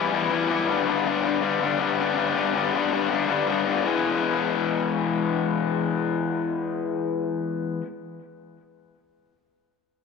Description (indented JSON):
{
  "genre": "rock",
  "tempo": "160 BPM",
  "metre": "4/4",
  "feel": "straight",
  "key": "E minor",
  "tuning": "A4 = 441 Hz",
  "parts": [
    { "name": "raw garage guitar", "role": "solo", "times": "0.0-7.9 s", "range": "G2 to E4", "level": "-22 LUFS", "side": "left 6 dB", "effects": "overdrive, tape echo" }
  ],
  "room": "moderate echo chamber reverb, RT60 1.4 s, digital ambience",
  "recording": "none",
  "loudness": "-22 LUFS",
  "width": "side -4 dB against mid",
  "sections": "0.0-3.8 A section; 3.8-6.8 B section",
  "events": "none",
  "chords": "0.0 Em; 0.7 G; 3.8 E"
}